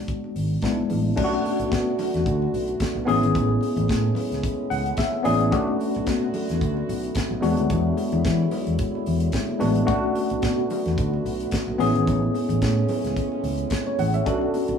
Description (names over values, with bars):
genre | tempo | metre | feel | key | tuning
disco | 110 BPM | 4/4 | swing 56% on 16ths | B dorian | A4 = 442 Hz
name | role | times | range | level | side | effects
tine electric piano | accompaniment | 0.0-14.8 s | G#3 to F#5 | -24 LUFS | left 2 dB | overdrive, fast stereo tremolo
tight funk drum kit | drums | 0.1-14.8 s | crash cymbal, hi-hat, kick drum, snare drum | -29 LUFS | equal | none
congas | percussion | 0.2-14.7 s | none | -36 LUFS | left 1 dB | none
fingered electric bass | bass | 0.4-14.8 s | G#1 to E3 | -25 LUFS | equal | none
mellow French horn section | sustained chords | 1.2-14.8 s | A2 to F#4 | -30 LUFS | right 3 dB | none
room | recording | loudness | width
moderate studio ambience, RT60 0.5 s | band playing live in one room, small room ambience | -21 LUFS | side -7 dB against mid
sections
0.0-1.2 A section; 1.2-14.8 B section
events
tine electric piano fill 4.4-5.5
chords
0.0 E9; 1.2 Bm9; 3.1 Amaj9; 5.5 Bm9; 7.4 E9; 9.9 Bm9; 11.8 Amaj9; 14.3 Bm9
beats
0.08 0.62 | 1.17 1.72 2.26 2.81 | 3.35 3.90 4.44 4.98 | 5.53 6.07 6.62 7.16 | 7.70 8.25 8.79 9.34 | 9.88 10.43 10.98 11.52 | 12.07 12.62 13.16 13.71 | 14.26